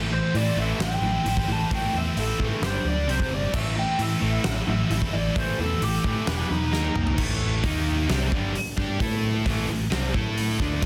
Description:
hard rock; 132 BPM; 4/4; straight; A minor; A4 = 438 Hz
high-gain distorted guitar; riff; 0.0-10.9 s; G2 to D5; -34 LUFS; equal; distortion
overdriven electric guitar; riff; 0.0-10.9 s; E2 to A4; -31 LUFS; equal
picked electric bass; bass; 0.0-10.9 s; E1 to A2; -30 LUFS; equal
lead guitar through a small cranked amp; melody; 0.1-7.2 s; D#4 to A5; -32 LUFS; equal; overdrive, slapback echo
huge arena drum kit; drums; 0.3-10.9 s; crash cymbal, hi-hat, kick drum, snare drum, toms; -31 LUFS; equal
small room ambience; dense, heavily limited modern master; -25 LUFS; mono
0.0-7.2 A section; 7.2-10.9 B section
lead electric guitar solo 0.0-7.2; drum fill 6.7-7.2
0.0 Am; 2.6 G5; 3.1 C5; 3.5 Am; 6.3 E5; 6.7 D#5; 7.2 A5; 7.6 D#5; 8.1 Am
0.34 0.80 1.25 | 1.71 2.17 2.62 3.08 | 3.53 3.99 4.45 4.90 | 5.36 5.82 6.27 6.73 | 7.18 7.64 8.09 8.55 | 9.00 9.46 9.91 10.37 | 10.82

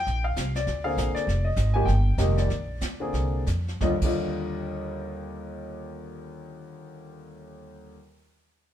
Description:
jazz piano trio; 171-200 BPM; 4/4; swing 60% on 8ths; Eb major; A4 = 440 Hz
clear grand piano; melody; 0.0-8.0 s; Eb2 to Ab5; -30 LUFS; left 2 dB
upright bass; bass; 0.0-7.9 s; F1 to F2; -26 LUFS; equal
jazz brush drum kit; drums; 0.1-4.1 s; brushed snare drum, crash cymbal, hi-hat, kick drum, snare drum; -32 LUFS; right 2 dB
moderate studio reverb, RT60 0.9 s; minimal, uncompressed stereo recording; -24 LUFS; side -11 dB against mid
0.0-3.8 A section; 3.8-6.6 B section
slowing down 1.3-3.8
0.1 Bb9; 1.3 Fm11; 2.5 Bb9; 3.8 Ebmaj9
| 0.07 0.37 0.67 0.97 | 1.27 1.57 1.87 2.17 | 2.49 2.81 3.13 3.47 | 3.81 4.16 4.52 4.87 | 5.22 5.57 5.92 6.27

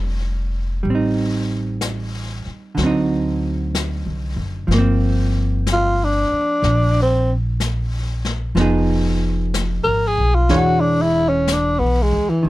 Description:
jazz ballad; 62 BPM; 4/4; swing 68% on 8ths; A4 = 438 Hz
hollow-body jazz guitar; accompaniment; 0.0-12.5 s; D3 to C#5; -22 LUFS; right 2 dB
upright bass; bass; 0.0-12.5 s; E1 to Eb2; -20 LUFS; equal
vintage brush drum kit; drums; 0.9-12.5 s; brushed snare drum, hi-hat, snare drum; -29 LUFS; left 4 dB
growling tenor saxophone; melody; 5.7-12.5 s; E3 to Bb4; -17 LUFS; equal
little or no reverb; close, detailed microphones; -16 LUFS; side -17 dB against mid
0.0-12.5 A section
tenor saxophone solo 0.0-12.5
0.0 Bb69 (rootless); 0.8 Am7b5; 2.8 D7b9; 4.7 Gm7; 8.6 Fm7b5; 10.5 E6
| 0.84 1.81 2.77 3.73 | 4.70 5.67 6.63 7.60 | 8.57 9.53 10.50 11.48 | 12.45

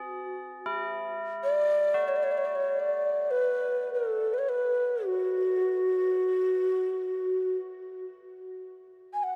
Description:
world meditative, free-time meditation music; free time; A4 = 441 Hz
tubular bells; texture; 0.0-9.4 s; E4 to B4; -40 LUFS; equal
breathy mellow Native American-style cedar flute; melody; 1.4-9.4 s; F#4 to G#5; -29 LUFS; equal; diffuse ambient delay
wet cathedral reverb, RT60 6.5 s; dark, warm production; -28 LUFS; mono
0.6-9.4 A section
free time

